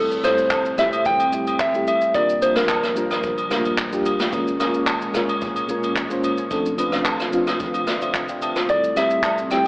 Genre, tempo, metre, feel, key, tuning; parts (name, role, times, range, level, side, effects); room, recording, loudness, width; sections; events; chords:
amapiano; 110 BPM; 4/4; straight; A phrygian; A4 = 443 Hz
soft struck synth lead; melody; 0.0-4.1, 8.7-9.7 s; A4 to G5; -20 LUFS; equal; chorus, digital delay
FM electric piano with tremolo; accompaniment; 0.0-9.7 s; F3 to A5; -24 LUFS; equal
airy breathy pad; sustained chords; 0.0-9.7 s; D2 to F4; -31 LUFS; right 1 dB; chorus, phaser, sidechain pumping
jazz brush drum kit; drums; 0.1-9.7 s; handclaps, kick drum, rim click, shaker, snare drum; -25 LUFS; equal
agogo bells and woodblock; percussion; 0.2-9.4 s; -27 LUFS; equal
light reverb, small room ambience; AM radio sound; -18 LUFS; side -26 dB against mid
0.0-9.7 A section
FM electric piano fill 7.6-8.7
0.0 Am7; 2.1 Gm7; 4.3 Bbm7; 6.5 Dm7; 8.7 Am7